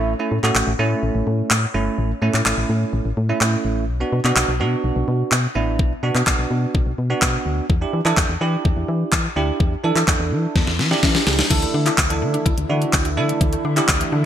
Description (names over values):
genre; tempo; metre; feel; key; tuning
dance-pop; 126 BPM; 4/4; straight; unclear; A4 = 443 Hz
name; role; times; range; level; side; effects
bell-like tine electric piano; accompaniment; 0.0-14.1 s; A3 to A4; -23 LUFS; right 4 dB; lush chorus, sidechain pumping
solid FM bass; bass; 0.0-14.3 s; G1 to E3; -21 LUFS; left 1 dB; sidechain pumping
pop drum kit; drums; 0.4-14.1 s; crash cymbal, handclaps, hi-hat, kick drum, snare drum; -20 LUFS; left 1 dB; overdrive, gated reverb
lush unison pad; sustained chords; 11.5-14.3 s; D3 to E4; -28 LUFS; left 1 dB; chorus, sidechain pumping
mallet-like synth pluck; arpeggios; 11.5-14.2 s; E3 to E4; -29 LUFS; left 4 dB; chorus, phaser, sidechain pumping, ping-pong delay
room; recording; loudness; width
light reverb; bright 1980s-style digital production; -17 LUFS; side -10 dB against mid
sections
0.0-11.5 A section; 11.5-14.3 B section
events
drum fill 10.6-11.5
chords
0.0 A; 3.9 Bm; 7.7 Em7; 11.5 Dsus2